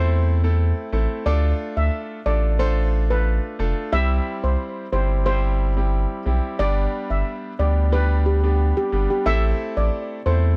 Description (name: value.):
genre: dancehall.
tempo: 90 BPM.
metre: 4/4.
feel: straight.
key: A minor.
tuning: A4 = 440 Hz.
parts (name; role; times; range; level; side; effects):
steel pan; melody; 0.0-10.5 s; G4 to E5; -28 LUFS; equal; delay.
bright grand piano; accompaniment; 0.0-10.6 s; G3 to A4; -30 LUFS; equal; none.
saturated sub bass; bass; 0.0-10.6 s; F1 to E2; -22 LUFS; equal; none.
room: little or no reverb.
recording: dark, warm production.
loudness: -21 LUFS.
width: mono.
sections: 0.0-9.3 A section; 9.3-10.6 B section.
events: none.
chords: 0.0 Am; 1.3 Dm; 3.9 C; 6.6 G; 9.3 Am.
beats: 0.59 | 1.26 1.93 2.59 3.26 | 3.93 4.59 5.26 5.93 | 6.59 7.26 7.93 8.59 | 9.26 9.93.